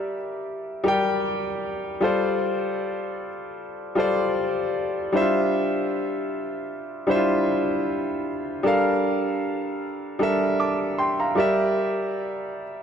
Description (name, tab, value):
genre	R&B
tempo	77 BPM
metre	4/4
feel	swing 54% on 16ths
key	G dorian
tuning	A4 = 439 Hz
part	warm grand piano	solo	0.0-12.8 s	G3 to D6	-22 LUFS	equal	none
room	moderate lush hall reverb, RT60 2.7 s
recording	none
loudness	-22 LUFS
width	side -8 dB against mid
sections	0.0-12.8 A section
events	none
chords	0.0 Gm6; 2.0 G9sus4; 5.1 Dm7/G; 8.6 Gm7; 11.4 Gm6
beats	0.07 0.85 1.63 | 2.41 3.19 3.97 4.75 | 5.53 6.31 7.09 7.87 | 8.65 9.43 10.20 10.98 | 11.76 12.54